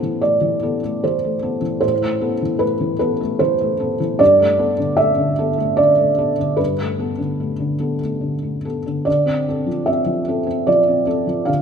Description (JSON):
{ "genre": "neoclassical minimalist piano", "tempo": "75 BPM", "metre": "3/4", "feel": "rubato", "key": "A minor", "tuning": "A4 = 440 Hz", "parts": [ { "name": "felt-muted upright piano", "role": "solo", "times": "0.0-11.6 s", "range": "G2 to F5", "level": "-16 LUFS", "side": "right 1 dB", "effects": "none" } ], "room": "light reverb", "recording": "minimal, uncompressed stereo recording", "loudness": "-16 LUFS", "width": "side -6 dB against mid", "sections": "0.0-11.6 A section", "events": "none", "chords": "0.0 Amadd9; 4.2 Gadd9; 9.1 Dm7" }